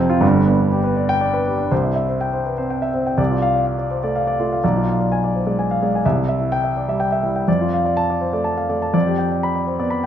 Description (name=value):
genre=classical, romantic character piece for solo piano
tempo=124 BPM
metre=3/4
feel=rubato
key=C major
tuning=A4 = 440 Hz
part: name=warm grand piano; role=solo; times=0.0-10.1 s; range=G1 to B5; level=-17 LUFS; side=equal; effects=none
room=moderate recital hall reverb, RT60 1.6 s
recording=none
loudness=-17 LUFS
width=side -9 dB against mid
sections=0.0-1.7 A section; 1.7-10.1 B section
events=none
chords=0.2 G; 1.7 C; 3.2 Dm7/C; 4.6 Bdim7; 6.0 C; 7.5 Dm/F; 8.9 G7/F